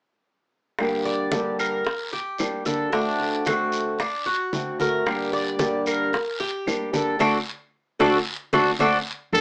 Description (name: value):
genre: latin, Cuban son and guajira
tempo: 112 BPM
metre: 4/4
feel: straight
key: G harmonic minor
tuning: A4 = 439 Hz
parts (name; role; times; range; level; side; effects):
- fingerpicked old ladder-braced acoustic guitar; accompaniment; 0.8-9.4 s; G2 to G4; -28 LUFS; equal; none
- bongos; percussion; 0.8-8.9 s; none; -32 LUFS; equal; none
- claves; percussion; 0.8-9.4 s; none; -35 LUFS; equal; none
- congas; percussion; 0.8-9.4 s; none; -36 LUFS; equal; none
- guiro; percussion; 0.8-9.4 s; none; -37 LUFS; equal; none
- Cuban tres; arpeggios; 1.1-9.0 s; D4 to D5; -26 LUFS; equal; none
- brilliant trumpet; melody; 9.3-9.4 s; A4; -20 LUFS; equal; none
- upright bass; bass; 9.3-9.4 s; G1; -29 LUFS; equal; none
room: light reverb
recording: small speaker sound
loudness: -24 LUFS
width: mono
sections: 0.8-9.3 A section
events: band accent 7.2-9.3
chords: 0.8 Gm; 2.9 D7; 5.1 Gm; 7.2 D7